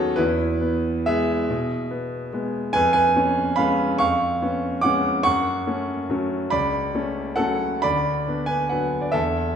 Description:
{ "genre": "classical, piano waltz", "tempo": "124-151 BPM", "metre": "3/4", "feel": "rubato", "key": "unclear", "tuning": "A4 = 441 Hz", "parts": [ { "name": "clear concert grand piano", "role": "solo", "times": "0.0-9.6 s", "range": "C#2 to D6", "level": "-20 LUFS", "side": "equal", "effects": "none" } ], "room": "wet recital hall reverb, RT60 1.6 s", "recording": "heard from further back in the room", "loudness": "-20 LUFS", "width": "side -8 dB against mid", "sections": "0.0-9.6 A section", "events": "none", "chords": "0.2 E; 2.7 C#7/E#; 5.3 F#m; 7.8 Bm/D", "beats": "| 0.18 0.61 1.08 | 1.50 1.90 2.33 | 2.75 3.16 3.58 | 4.00 4.42 4.84 | 5.25 5.67 6.09 | 6.51 6.94 7.38 | 7.85 8.28 8.72 | 9.14" }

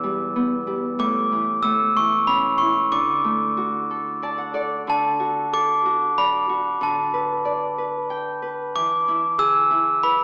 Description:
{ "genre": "children's music, lullaby", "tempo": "93 BPM", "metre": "3/4", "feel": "rubato", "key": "D major", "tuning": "A4 = 438 Hz", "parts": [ { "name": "glockenspiel with soft plastic mallets", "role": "melody", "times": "0.0-10.2 s", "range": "A5 to E6", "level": "-19 LUFS", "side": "equal", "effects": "none" }, { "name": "Celtic harp", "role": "accompaniment", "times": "0.0-10.2 s", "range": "E2 to A5", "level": "-26 LUFS", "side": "equal", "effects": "none" } ], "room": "wet recital hall reverb, RT60 1.7 s", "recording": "heard from further back in the room, small speaker sound", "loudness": "-18 LUFS", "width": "side -29 dB against mid", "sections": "0.0-4.9 A section; 4.9-10.2 A section", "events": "harp fill 3.9-4.9", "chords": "0.0 Em; 1.0 Asus4; 1.6 A; 2.9 D; 6.8 G/D; 8.7 E", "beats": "0.34 | 0.99 1.63 2.27 | 2.91 3.56 4.21 | 4.87 5.52 6.17 | 6.82 7.46 8.11 | 8.74 9.38 10.03" }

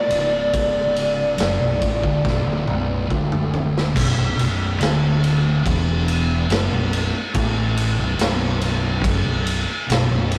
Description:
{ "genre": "stoner and doom metal", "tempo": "71 BPM", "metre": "4/4", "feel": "straight", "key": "B minor", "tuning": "A4 = 440 Hz", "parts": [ { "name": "fuzz lead guitar", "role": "melody", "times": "0.0-3.1 s", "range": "D5", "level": "-23 LUFS", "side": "equal", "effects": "distortion" }, { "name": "thick fuzz guitar", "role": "riff", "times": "0.1-10.4 s", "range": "B1 to A2", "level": "-26 LUFS", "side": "equal", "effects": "distortion" }, { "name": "thick fuzz guitar", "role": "riff", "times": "0.1-10.4 s", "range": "B1 to A2", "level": "-29 LUFS", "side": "equal", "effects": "none" }, { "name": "fuzz fingered electric bass", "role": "bass", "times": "0.1-10.4 s", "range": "B0 to A1", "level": "-26 LUFS", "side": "equal", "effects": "overdrive" }, { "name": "raw garage drum kit", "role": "drums", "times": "0.1-10.4 s", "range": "crash cymbal, kick drum, ride cymbal, snare drum, toms", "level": "-25 LUFS", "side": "equal", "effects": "none" } ], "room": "wet studio ambience, RT60 0.5 s", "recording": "rough rehearsal-room recording, warm saturation", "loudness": "-20 LUFS", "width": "mono", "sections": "0.0-4.0 A section; 4.0-10.4 B section", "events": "drum fill 2.2-4.0", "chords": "0.0 Bm", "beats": "| 0.54 1.39 2.25 3.10 | 3.95 4.80 5.65 6.50 | 7.35 8.19 9.04 9.88" }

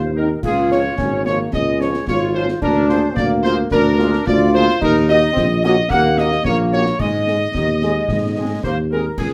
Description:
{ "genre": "military-style march for wind band", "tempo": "110 BPM", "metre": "2/4", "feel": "straight", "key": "Db major", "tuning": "A4 = 440 Hz", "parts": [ { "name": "warm woodwind section", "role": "second line", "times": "0.0-9.3 s", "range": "Ab4 to Gb5", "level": "-28 LUFS", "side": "equal", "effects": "none" }, { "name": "mellow trombone section", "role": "sustained chords", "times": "0.0-9.0 s", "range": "Eb3 to F4", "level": "-23 LUFS", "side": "equal", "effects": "none" }, { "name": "mellow tuba", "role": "bass", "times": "0.0-9.3 s", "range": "Ab1 to Ab2", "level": "-21 LUFS", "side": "equal", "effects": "none" }, { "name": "mellow trumpet section", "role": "melody", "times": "0.2-9.3 s", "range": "Ab4 to Gb5", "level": "-25 LUFS", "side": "equal", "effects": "none" }, { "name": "mellow large flute ensemble", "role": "second line", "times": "0.2-9.3 s", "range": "Ab4 to Gb5", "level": "-28 LUFS", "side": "equal", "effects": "none" }, { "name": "mellow French horn section", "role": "accompaniment", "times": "0.2-9.0 s", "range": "Eb3 to Ab4", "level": "-26 LUFS", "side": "equal", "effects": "none" }, { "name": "clash cymbals, concert bass drum and concert snare drum", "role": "drums", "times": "0.4-9.3 s", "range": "none", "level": "-29 LUFS", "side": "equal", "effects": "none" } ], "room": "moderate studio reverb, RT60 0.6 s", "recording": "none", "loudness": "-17 LUFS", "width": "mono", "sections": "0.4-9.3 A section", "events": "none", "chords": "0.4 Db; 2.6 Bb7/D; 4.8 Ebm7; 7.0 Absus4; 8.1 Ab", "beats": "| 0.44 0.99 | 1.54 2.08 | 2.63 3.18 | 3.72 4.27 | 4.82 5.36 | 5.91 6.45 | 7.00 7.55 | 8.09 8.64 | 9.19" }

